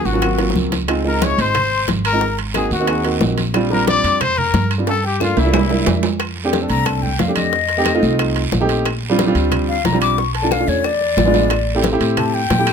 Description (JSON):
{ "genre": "Afro-Cuban jazz", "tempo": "181 BPM", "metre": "4/4", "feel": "straight", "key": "F major", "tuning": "A4 = 440 Hz", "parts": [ { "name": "clear trumpet", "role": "melody", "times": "0.0-6.0 s", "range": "E4 to D5", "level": "-20 LUFS", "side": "left 4 dB", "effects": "none" }, { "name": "breathy mellow silver concert flute", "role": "second line", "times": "0.0-12.7 s", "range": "Db5 to D6", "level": "-22 LUFS", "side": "left 6 dB", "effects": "none" }, { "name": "warm grand piano", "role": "accompaniment", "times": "0.0-12.7 s", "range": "Gb3 to A4", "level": "-19 LUFS", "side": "right 2 dB", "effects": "none" }, { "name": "upright bass", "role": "bass", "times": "0.1-12.7 s", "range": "Ab1 to Bb2", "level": "-21 LUFS", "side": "equal", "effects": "none" }, { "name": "congas", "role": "percussion", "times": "0.1-12.7 s", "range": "none", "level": "-25 LUFS", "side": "equal", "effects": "none" }, { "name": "guiro", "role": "percussion", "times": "0.1-12.7 s", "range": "none", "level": "-30 LUFS", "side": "right 7 dB", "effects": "none" }, { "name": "bongos", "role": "percussion", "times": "0.2-12.7 s", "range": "none", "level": "-26 LUFS", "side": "left 9 dB", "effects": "none" }, { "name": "claves", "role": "percussion", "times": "0.2-12.7 s", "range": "none", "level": "-30 LUFS", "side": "left 5 dB", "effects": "none" }, { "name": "timbales", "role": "percussion", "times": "0.2-12.7 s", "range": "none", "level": "-24 LUFS", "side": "right 8 dB", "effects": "none" } ], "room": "light reverb", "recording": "close, detailed microphones", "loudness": "-15 LUFS", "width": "side -6 dB against mid", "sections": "0.0-6.2 A section; 6.2-12.7 B section", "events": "drum fill 0.4-0.9, 4.9-6.2, 10.5-11.5; flute solo 6.2-12.7", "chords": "0.2 Ab13; 0.9 Dbmaj9; 2.2 Ab9; 3.5 Bb6; 4.9 Gm7; 5.5 C7; 6.2 F6; 7.5 F7; 8.9 Bb6; 10.2 Bm7b5; 10.8 E7b9; 11.5 Am7" }